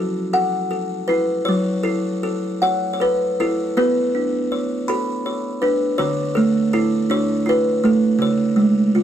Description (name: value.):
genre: children's music.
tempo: 54 BPM (dotted quarters).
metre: 6/8.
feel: rubato.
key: F# minor.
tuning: A4 = 441 Hz.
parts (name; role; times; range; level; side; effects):
buzzing kalimba; solo; 0.0-9.0 s; C#3 to B5; -17 LUFS; right 1 dB; none.
room: light reverb.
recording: dark, warm production, vinyl crackle.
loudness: -17 LUFS.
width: side -10 dB against mid.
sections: 0.0-1.5 A section; 1.5-9.0 B section.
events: none.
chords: 0.0 F#m7; 3.8 Bmadd9; 6.0 Dsus2; 8.2 C#5.